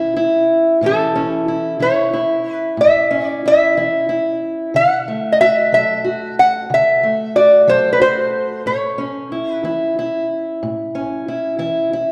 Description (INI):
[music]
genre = acoustic country blues, solo or duo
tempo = 61 BPM (dotted quarters)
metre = 12/8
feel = straight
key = A major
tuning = A4 = 439 Hz
[part]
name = fingerpicked steel-string acoustic guitar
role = accompaniment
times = 0.0-12.1 s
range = A2 to A4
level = -21 LUFS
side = equal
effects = none
[part]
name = lap resonator guitar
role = melody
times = 0.9-9.9 s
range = A4 to F#5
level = -16 LUFS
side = equal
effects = none
[sound]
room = wet recital hall reverb, RT60 1.7 s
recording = recorded in a church or concert hall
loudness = -16 LUFS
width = mono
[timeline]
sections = 0.8-12.1 A section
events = none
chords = 0.0 A (rootless); 0.8 A; 4.7 D; 8.7 A